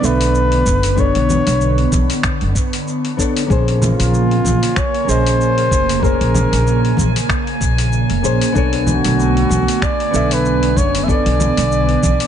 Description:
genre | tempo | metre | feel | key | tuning
sunset chillout | 95 BPM | 4/4 | swing 57% on 16ths | unclear | A4 = 445 Hz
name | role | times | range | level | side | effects
trumpet with bucket mute | melody | 0.0-12.3 s | F4 to E5 | -20 LUFS | equal | vintage 12-bit sampler grit, tape echo, shimmer reverb
nylon-string guitar | accompaniment | 0.0-12.3 s | Bb3 to E5 | -22 LUFS | moving between left 7 dB and right 5 dB | auto-pan, shimmer reverb
airy breathy pad | sustained chords | 0.0-12.3 s | Db3 to B3 | -21 LUFS | right 2 dB | chorus, phaser
upright bass | bass | 0.0-12.2 s | F1 to B1 | -17 LUFS | equal | none
dusty soul sampler-style drum kit | drums | 0.0-12.3 s | finger snaps, hi-hat, shaker | -25 LUFS | left 2 dB | none
electronic kick drum | drums | 0.7-12.2 s | none | -20 LUFS | equal | none
congas | percussion | 1.3-12.2 s | none | -22 LUFS | right 1 dB | none
drifting glass-harmonics texture | texture | 4.2-12.3 s | Ab5 | -27 LUFS | left 3 dB | chorus, built-in reverb, shimmer reverb
room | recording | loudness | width
light reverb | nothing above 10.3 kHz | -13 LUFS | side -9 dB against mid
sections
0.0-12.3 A section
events
none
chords
0.0 Bm9; 3.5 Bbm9; 8.6 Bm9

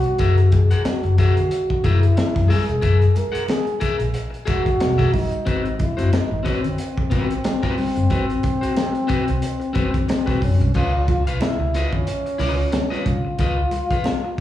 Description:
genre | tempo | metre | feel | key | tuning
funk | 91 BPM | 4/4 | swing 56% on 16ths | unclear | A4 = 445 Hz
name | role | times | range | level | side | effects
dark trombone | melody | 0.0-14.4 s | C4 to Bb4 | -24 LUFS | equal | slapback echo, tape echo
crunchy breakbeat drum kit | drums | 0.0-14.4 s | crash cymbal, hi-hat, kick drum, snare drum | -24 LUFS | equal | none
electric guitar at the edge of break-up | accompaniment | 0.1-14.3 s | C4 to Gb5 | -27 LUFS | left 5 dB | slapback echo
vintage muted fingered electric bass | bass | 0.2-14.4 s | Fb1 to Db3 | -19 LUFS | left 1 dB | none
congas | percussion | 0.2-14.2 s | none | -31 LUFS | right 6 dB | slapback echo
room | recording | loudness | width
small room ambience | live gig heard through the venue's PA, club reverb, studio reverb | -17 LUFS | side -13 dB against mid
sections
0.0-10.8 A section; 10.8-14.4 B section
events
none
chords
0.2 Gb9; 5.5 Ab7#9; 10.8 Db9

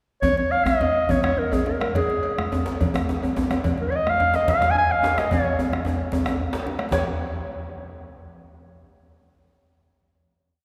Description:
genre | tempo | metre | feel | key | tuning
west african traditional, West African drum ensemble | 139-156 BPM (dotted quarters) | 12/8 | straight | Db major pentatonic | A4 = 441 Hz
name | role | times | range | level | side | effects
warm clarinet | melody | 0.2-7.0 s | Ab4 to Ab5 | -25 LUFS | equal | none
bombo | percussion | 0.2-7.0 s | none | -32 LUFS | equal | none
congas | percussion | 0.2-7.0 s | none | -35 LUFS | equal | none
cowbell | percussion | 0.2-7.0 s | none | -37 LUFS | equal | none
djembe | percussion | 0.2-7.0 s | none | -34 LUFS | equal | none
djembe | percussion | 0.2-7.0 s | none | -30 LUFS | equal | none
room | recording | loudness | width
wet church reverb, RT60 3.6 s | recorded in a church or concert hall | -22 LUFS | mono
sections
0.2-6.9 A section; 6.9-8.5 final note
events
speeding up 0.2-8.5; drum fill 5.3-6.9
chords
none

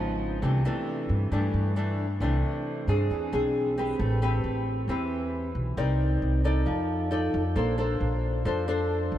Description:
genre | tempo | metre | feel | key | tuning
bossa nova | 134 BPM | 4/4 | straight | C major, A minor from 4.0 s | A4 = 442 Hz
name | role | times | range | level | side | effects
nylon-string guitar | accompaniment | 0.0-9.2 s | G2 to D5 | -28 LUFS | left 1 dB | lush chorus
upright bass | bass | 0.0-9.2 s | Ab1 to G2 | -27 LUFS | equal | none
room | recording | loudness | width
moderate huge ambient reverb, RT60 4.2 s | dreamy mix soaked in reverb | -25 LUFS | side -12 dB against mid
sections
0.0-4.0 A section; 4.0-9.2 B section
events
none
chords
0.4 C69; 3.1 E7b13; 4.0 Am9; 5.8 Cm9; 6.7 F6; 7.6 Bbmaj9

